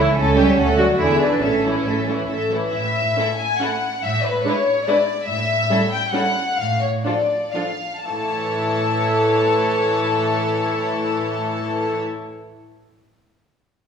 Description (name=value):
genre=quick classical-period movement for string orchestra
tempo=112-145 BPM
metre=3/4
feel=rubato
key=A major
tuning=A4 = 440 Hz
part: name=warm studio violin section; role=melody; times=0.0-12.0 s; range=B4 to A5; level=-22 LUFS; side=left 4 dB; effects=none
part: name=rich studio violin section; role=second line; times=0.0-12.0 s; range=E4 to C#5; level=-24 LUFS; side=equal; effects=none
part: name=warm studio viola section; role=accompaniment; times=0.0-12.0 s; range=D3 to E4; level=-24 LUFS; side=equal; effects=none
part: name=warm studio cello section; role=bass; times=0.0-12.0 s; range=A2 to F#4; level=-24 LUFS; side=right 3 dB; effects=none
part: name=warm studio double bass section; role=bass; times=0.0-2.7 s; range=A1 to E2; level=-24 LUFS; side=right 2 dB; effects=none
room=wet scoring stage reverb, RT60 1.5 s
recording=studio reverb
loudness=-17 LUFS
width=side -7 dB against mid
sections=0.0-2.7 A section; 2.7-8.1 B section; 8.1-11.2 C section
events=slowing down 4.7-8.1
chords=0.2 A7/C#; 0.6 D; 1.0 E7; 1.4 A; 4.0 E7/A; 5.3 A7; 6.6 Dm/A; 8.1 A